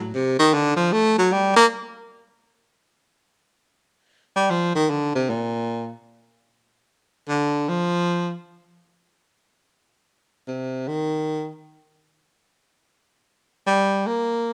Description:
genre	jazz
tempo	free time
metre	none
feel	none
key	unclear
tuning	A4 = 438 Hz
part	clear baritone saxophone	solo	0.0-1.6, 4.4-14.5 s	A2 to Bb3	-22 LUFS	equal	none
room	moderate large studio reverb, RT60 1.1 s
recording	none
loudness	-22 LUFS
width	mono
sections	0.0-3.7 A section; 3.7-14.5 B section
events	baritone saxophone solo 0.0-3.7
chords	none

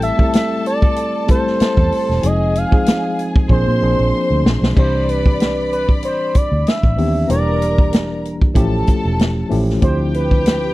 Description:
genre	lush 1970s-style soul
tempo	95 BPM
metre	4/4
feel	swing 54% on 16ths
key	C major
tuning	A4 = 443 Hz
part	expressive synth lead	melody	0.0-10.7 s	B4 to F5	-20 LUFS	equal	chorus
part	dark studio string section	second line	0.0-10.7 s	G4 to C6	-27 LUFS	left 2 dB	none
part	mellow tine electric piano	accompaniment	0.0-10.7 s	E3 to A4	-21 LUFS	left 1 dB	medium stereo tremolo
part	vintage muted fingered electric bass	bass	0.0-10.7 s	E1 to Bb2	-19 LUFS	equal	none
part	vintage drum kit	drums	0.0-10.6 s	crash cymbal, hi-hat, kick drum, snare drum	-15 LUFS	equal	none
room	little or no reverb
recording	dry, close 1970s-style studio recording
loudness	-14 LUFS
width	side -18 dB against mid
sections	0.0-4.8 A section; 4.8-10.7 B section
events	drum fill 3.5-4.8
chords	0.0 Am7; 2.2 Fm7; 3.5 Bb9; 4.8 Cmaj9; 7.3 Em7b5; 8.6 A7b13; 9.8 Dm11

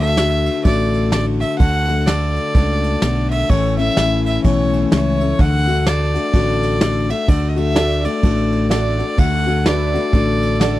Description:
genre	honky-tonk and classic country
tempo	127 BPM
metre	4/4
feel	swing 61% on 8ths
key	D major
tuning	A4 = 441 Hz
part	clear fiddle	melody	0.0-10.8 s	C#5 to F#5	-22 LUFS	right 1 dB	none
part	picked steel-string acoustic guitar	accompaniment	0.0-10.8 s	A2 to F#4	-20 LUFS	left 5 dB	none
part	fingered electric bass	bass	0.0-10.8 s	A1 to D2	-19 LUFS	right 1 dB	none
part	vintage brush drum kit	drums	0.2-10.7 s	kick drum, ride cymbal, snare drum	-20 LUFS	right 1 dB	none
part	tack piano	accompaniment	7.7-10.8 s	D4 to D5	-24 LUFS	right 7 dB	none
room	little or no reverb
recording	dry, close 1970s-style studio recording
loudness	-14 LUFS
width	side -15 dB against mid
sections	0.0-10.8 A section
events	none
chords	0.0 D; 3.5 A; 5.4 D

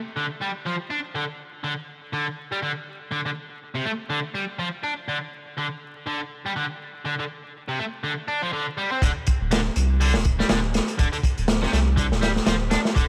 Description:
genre	breakbeat, breaks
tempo	122 BPM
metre	4/4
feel	swing 57% on 16ths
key	D minor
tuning	A4 = 440 Hz
part	distorted electric guitar	riff	0.2-13.0 s	C3 to D4	-30 LUFS	equal	overdrive, dub echo
part	saturated sub bass	bass	9.0-13.0 s	D1 to C2	-26 LUFS	equal	none
part	crunchy breakbeat drum kit	drums	9.0-13.1 s	hi-hat, kick drum, snare drum	-24 LUFS	equal	none
room	light reverb, small room ambience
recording	vinyl crackle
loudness	-25 LUFS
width	mono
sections	0.0-9.0 A section; 9.0-13.1 B section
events	drop 9.0-13.1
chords	0.0 N.C.; 9.0 D7(no3)

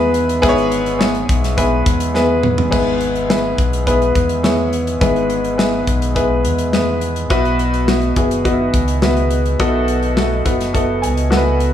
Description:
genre	piano-driven pop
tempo	105 BPM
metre	4/4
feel	straight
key	E major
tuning	A4 = 440 Hz
part	clear upright piano	accompaniment	0.0-11.7 s	G#2 to G#5	-16 LUFS	left 1 dB	none
part	sub bass with octave	bass	0.0-11.7 s	F#1 to E2	-20 LUFS	equal	none
part	modern studio drum kit	drums	0.1-11.7 s	crash cymbal, hi-hat, kick drum, snare drum, toms	-20 LUFS	left 1 dB	none
room	moderate plate reverb, RT60 2.3 s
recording	small room ambience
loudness	-14 LUFS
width	side -10 dB against mid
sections	0.0-2.7 A section; 2.7-7.3 B section; 7.3-11.7 C section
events	drum fill 2.1-2.7; upright piano fill 10.7-11.7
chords	0.0 E/G#; 7.3 Bsus4

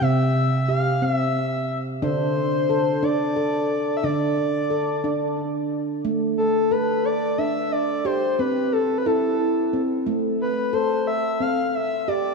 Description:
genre	world meditative, meditative tuned percussion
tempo	60 BPM (dotted quarters)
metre	6/8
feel	straight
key	D dorian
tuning	A4 = 440 Hz
part	breathy flute-like synth lead	melody	0.0-12.3 s	A4 to F5	-24 LUFS	left 1 dB	chorus, diffuse ambient delay
part	handpan	arpeggios	0.0-12.3 s	C3 to A4	-22 LUFS	equal	diffuse ambient delay
room	wet lush hall reverb, RT60 2.9 s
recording	none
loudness	-20 LUFS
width	side -3 dB against mid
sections	0.0-6.0 A section; 6.0-12.3 B section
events	none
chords	0.0 C; 2.0 D5; 8.1 C; 10.1 Am

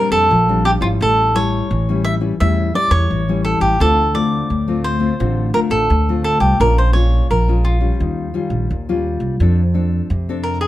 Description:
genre	samba and choro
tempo	86 BPM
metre	4/4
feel	straight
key	F major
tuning	A4 = 440 Hz
part	cavaquinho	melody	0.0-10.7 s	F4 to E5	-18 LUFS	right 1 dB	plate reverb
part	nylon-string guitar	accompaniment	0.0-10.7 s	A2 to A4	-20 LUFS	left 4 dB	none
part	upright bass	bass	0.1-10.7 s	Ab1 to F2	-17 LUFS	equal	none
room	light reverb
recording	dark, warm production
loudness	-14 LUFS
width	side -14 dB against mid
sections	0.0-9.4 A section; 9.4-10.7 B section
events	cavaquinho solo 9.4-10.7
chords	0.0 Bb69; 1.0 A7; 3.8 Dm7; 6.6 Bbm7; 8.0 Eb9; 9.4 F6

